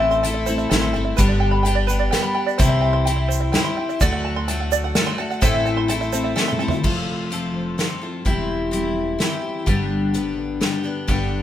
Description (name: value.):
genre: indie folk with a building arrangement.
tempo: 127 BPM.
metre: 3/4.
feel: straight.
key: G major.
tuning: A4 = 440 Hz.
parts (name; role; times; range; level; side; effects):
picked twelve-string acoustic guitar; accompaniment; 0.0-11.4 s; G2 to A4; -22 LUFS; left 2 dB; none.
open-back banjo; arpeggios; 0.0-6.8 s; B4 to C6; -26 LUFS; right 5 dB; none.
upright bass; bass; 0.0-11.4 s; E1 to D2; -24 LUFS; equal; none.
egg shaker; percussion; 0.1-6.8 s; none; -34 LUFS; right 8 dB; none.
unplugged drum kit; drums; 0.2-11.2 s; crash cymbal, hi-hat, kick drum, snare drum, toms; -22 LUFS; equal; none.
fingerpicked steel-string acoustic guitar; accompaniment; 6.8-11.4 s; E2 to G4; -26 LUFS; left 2 dB; none.
room: moderate stone room reverb, RT60 1.2 s.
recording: band playing live in one room.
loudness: -18 LUFS.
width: side -11 dB against mid.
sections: 0.0-6.8 A section; 6.8-11.4 B section.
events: drum fill 6.4-6.8.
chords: 0.0 Am; 1.2 G; 2.6 C; 4.0 D; 5.4 Am; 6.8 F; 8.2 C/E; 9.7 G.